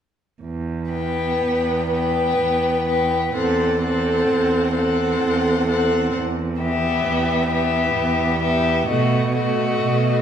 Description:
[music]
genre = classical, slow romantic movement for string quartet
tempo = 59-67 BPM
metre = 3/4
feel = rubato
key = E minor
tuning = A4 = 440 Hz
[part]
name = warm cello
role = bass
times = 0.4-10.2 s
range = E2 to B2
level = -23 LUFS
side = right 3 dB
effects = none
[part]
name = warm violin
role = melody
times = 0.9-10.2 s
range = D#5 to G5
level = -25 LUFS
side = left 7 dB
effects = none
[part]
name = rich violin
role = second line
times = 0.9-10.2 s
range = F#4 to B4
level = -22 LUFS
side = left 2 dB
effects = none
[part]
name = rich viola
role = accompaniment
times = 0.9-10.2 s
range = A3 to C4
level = -24 LUFS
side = right 3 dB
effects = none
[sound]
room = wet recital hall reverb, RT60 1.7 s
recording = recorded in a church or concert hall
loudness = -18 LUFS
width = side -8 dB against mid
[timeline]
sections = 0.4-10.2 A section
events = none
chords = 0.4 Em; 3.4 F#m7b5/E; 6.2 Em; 8.9 B7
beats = | 0.42 1.42 2.40 | 3.35 4.29 5.23 | 6.16 7.07 7.97 | 8.89 9.85

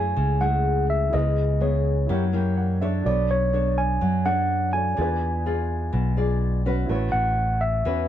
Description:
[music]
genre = bossa nova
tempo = 125 BPM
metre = 4/4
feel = straight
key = A major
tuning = A4 = 440 Hz
[part]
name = mellow tine electric piano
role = melody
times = 0.0-8.1 s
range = C#5 to G#5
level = -26 LUFS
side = equal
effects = plate reverb
[part]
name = dark baby grand piano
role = accompaniment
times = 0.0-8.1 s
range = D4 to F#5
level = -35 LUFS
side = right 3 dB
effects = none
[part]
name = nylon-string guitar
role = accompaniment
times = 0.0-8.1 s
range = B2 to D5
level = -28 LUFS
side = left 4 dB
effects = none
[part]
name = fingered electric bass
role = bass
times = 0.0-8.1 s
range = A1 to F#2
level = -23 LUFS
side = right 1 dB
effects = none
[sound]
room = little or no reverb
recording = dark, warm production, nothing above 10.8 kHz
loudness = -21 LUFS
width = side -11 dB against mid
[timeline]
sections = 0.0-6.9 A section; 6.9-8.1 B section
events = grand piano fill 2.3-3.1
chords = 0.0 F#m9; 1.1 C#m7; 2.1 F#7b9; 3.1 Bm9; 5.0 E7b9; 6.9 A69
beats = 0.17 0.66 | 1.14 1.62 2.10 2.58 | 3.06 3.54 4.02 4.50 | 4.98 5.46 5.94 6.42 | 6.90 7.38 7.86

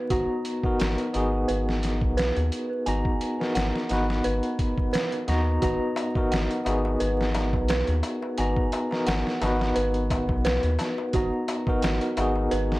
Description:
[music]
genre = trip hop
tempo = 87 BPM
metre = 4/4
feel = swing 54% on 16ths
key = G# minor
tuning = A4 = 440 Hz
[part]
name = bell-like tine electric piano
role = accompaniment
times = 0.0-12.8 s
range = B3 to A#5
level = -27 LUFS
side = equal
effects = tremolo, tape echo
[part]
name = dark detuned synth bell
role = arpeggios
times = 0.0-12.8 s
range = F#4 to G#5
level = -31 LUFS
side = right 2 dB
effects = chorus, analog delay
[part]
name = round analog bass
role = bass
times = 0.1-12.8 s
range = G#1 to D#2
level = -27 LUFS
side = equal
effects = none
[part]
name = trip hop sampler-style drum kit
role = drums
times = 0.1-12.8 s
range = hi-hat, kick drum, snare drum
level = -29 LUFS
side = equal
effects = none
[part]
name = darbuka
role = percussion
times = 5.6-12.7 s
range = none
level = -36 LUFS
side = left 3 dB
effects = none
[sound]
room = digital ambience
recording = dry, gritty hardware recording, vinyl crackle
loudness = -23 LUFS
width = side -18 dB against mid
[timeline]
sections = 0.0-12.8 A section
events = none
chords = 0.0 G#m7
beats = | 0.10 0.80 1.49 2.17 | 2.86 3.55 4.24 4.93 | 5.62 6.31 7.00 7.69 | 8.38 9.07 9.76 10.45 | 11.14 11.83 12.52

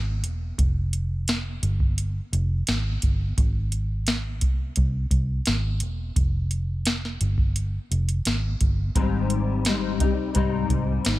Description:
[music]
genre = indie pop, bedroom pop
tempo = 86 BPM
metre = 4/4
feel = straight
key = Ab major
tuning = A4 = 439 Hz
[part]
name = vintage muted fingered electric bass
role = bass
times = 0.0-11.2 s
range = Fb1 to C2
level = -25 LUFS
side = equal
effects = none
[part]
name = soft vintage rhythm box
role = drums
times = 0.2-11.2 s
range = hi-hat, kick drum, snare drum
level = -25 LUFS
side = equal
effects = none
[part]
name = nylon-string guitar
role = accompaniment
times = 9.0-11.2 s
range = Ab2 to Eb4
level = -24 LUFS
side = left 5 dB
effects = ensemble chorus, warbly pitch drift
[sound]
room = little or no reverb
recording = none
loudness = -22 LUFS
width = side -16 dB against mid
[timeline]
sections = 0.0-11.2 A section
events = none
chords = 0.0 N.C.; 3.4 Ab; 6.2 N.C.; 9.0 Abmaj7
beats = | 0.58 1.28 1.98 2.68 | 3.37 4.07 4.77 5.47 | 6.17 6.86 7.56 8.26 | 8.96 9.65 10.35 11.05

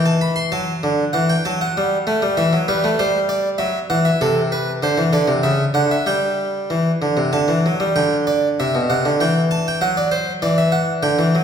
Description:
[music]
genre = classical, baroque-style two-part invention for harpsichord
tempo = 97 BPM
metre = 3/4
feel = straight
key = unclear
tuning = A4 = 440 Hz
[part]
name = harpsichord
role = solo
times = 0.0-11.4 s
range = B2 to C6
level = -16 LUFS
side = equal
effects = none
[sound]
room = wet recital hall reverb, RT60 1.7 s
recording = heard from further back in the room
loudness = -16 LUFS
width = side -8 dB against mid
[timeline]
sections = 0.5-8.0 A section; 8.0-11.4 B section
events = none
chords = 0.0 E5; 0.5 D; 1.8 F#m; 2.4 C/E; 3.6 Esus2; 4.2 Am/C; 5.4 C#madd11; 6.1 Dsus4/G; 7.3 D; 8.0 G/D; 9.2 A5/E; 9.8 D7/F#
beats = | 0.52 1.14 1.75 | 2.37 2.98 3.58 | 4.20 4.81 5.43 | 6.06 6.70 7.34 | 7.97 8.60 9.21 | 9.82 10.43 11.04

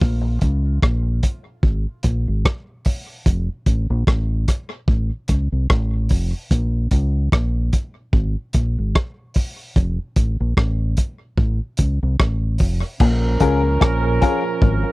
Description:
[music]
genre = dub reggae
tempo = 74 BPM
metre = 4/4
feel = swing 57% on 16ths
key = Bb minor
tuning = A4 = 440 Hz
[part]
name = fingered electric bass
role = bass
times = 0.0-14.8 s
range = F1 to Db2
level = -19 LUFS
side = equal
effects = none
[part]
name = crunchy breakbeat drum kit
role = drums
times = 0.0-14.8 s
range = crash cymbal, hi-hat, kick drum, rim click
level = -18 LUFS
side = equal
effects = none
[part]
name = warm horn section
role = second line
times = 13.0-14.9 s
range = F3 to Bb4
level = -24 LUFS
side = right 4 dB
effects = tape echo
[part]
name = electric guitar with an envelope filter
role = riff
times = 13.0-14.8 s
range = Ab2 to Db3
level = -26 LUFS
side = left 5 dB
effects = phaser, tape echo
[part]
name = bright upright piano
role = stabs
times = 13.4-14.4 s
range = Db4 to Bb4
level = -22 LUFS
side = left 7 dB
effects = tape echo
[sound]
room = little or no reverb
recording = dry, close 1970s-style studio recording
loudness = -17 LUFS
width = side -21 dB against mid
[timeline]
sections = 0.0-13.0 A section; 13.0-14.9 B section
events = none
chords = 0.0 Bbm7; 3.3 F; 6.5 Bbm7; 9.8 F; 13.0 Bbm7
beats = | 0.01 0.83 1.64 2.45 | 3.26 4.08 4.89 5.70 | 6.51 7.33 8.14 8.95 | 9.76 10.57 11.38 12.20 | 13.01 13.81 14.62

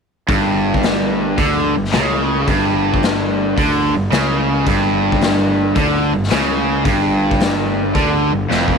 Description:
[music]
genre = blues rock power trio and southern rock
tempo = 110 BPM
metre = 4/4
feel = swing 68% on 8ths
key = unclear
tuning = A4 = 440 Hz
[part]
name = cranked stack guitar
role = riff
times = 0.3-8.8 s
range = F2 to D3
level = -16 LUFS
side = right 1 dB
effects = overdrive
[part]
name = fuzz fingered electric bass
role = bass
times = 0.3-8.8 s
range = F1 to D2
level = -22 LUFS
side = right 1 dB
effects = overdrive
[part]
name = raw garage drum kit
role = drums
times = 0.3-8.8 s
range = hi-hat, kick drum, snare drum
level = -20 LUFS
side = left 3 dB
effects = none
[sound]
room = light reverb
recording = 1960s-style stereo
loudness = -14 LUFS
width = side -5 dB against mid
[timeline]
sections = 0.3-8.8 A section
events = drum fill 8.5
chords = 0.3 G5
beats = | 0.29 0.84 1.39 1.93 | 2.48 3.02 3.57 4.12 | 4.66 5.21 5.76 6.30 | 6.85 7.40 7.95 8.49

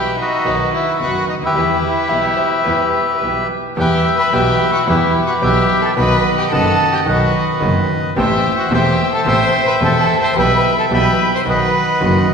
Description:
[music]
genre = tango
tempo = 109 BPM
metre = 4/4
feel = rubato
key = E harmonic minor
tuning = A4 = 441 Hz
[part]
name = bandoneon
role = melody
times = 0.0-12.3 s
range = F#4 to C6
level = -16 LUFS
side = left 1 dB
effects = none
[part]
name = warm violin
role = second line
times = 0.0-12.3 s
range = D#4 to C5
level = -21 LUFS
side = left 1 dB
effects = none
[part]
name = clear concert grand piano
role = accompaniment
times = 0.0-12.2 s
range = E1 to G4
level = -19 LUFS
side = equal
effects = none
[part]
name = dark studio string section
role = stabs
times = 0.0-3.5 s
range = D#4 to B4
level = -29 LUFS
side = right 2 dB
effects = none
[part]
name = rich double bass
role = bass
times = 0.0-12.3 s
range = E1 to E2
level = -21 LUFS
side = right 2 dB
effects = none
[part]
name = vintage hollow-body jazz guitar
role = second line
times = 2.1-3.7 s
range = A#4 to E5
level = -28 LUFS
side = right 1 dB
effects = none
[sound]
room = wet concert hall reverb, RT60 2.0 s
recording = recorded in a church or concert hall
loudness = -13 LUFS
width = side -6 dB against mid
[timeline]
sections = 0.0-3.8 A section; 3.8-12.3 B section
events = none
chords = 0.5 B; 1.6 Em; 6.0 B; 8.2 Am7; 10.4 Em/B; 11.5 B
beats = 0.46 1.00 | 1.55 2.11 2.66 3.22 | 3.77 4.33 4.88 5.43 | 5.98 6.52 7.07 7.62 | 8.17 8.71 9.26 9.81 | 10.36 10.91 11.47 12.02

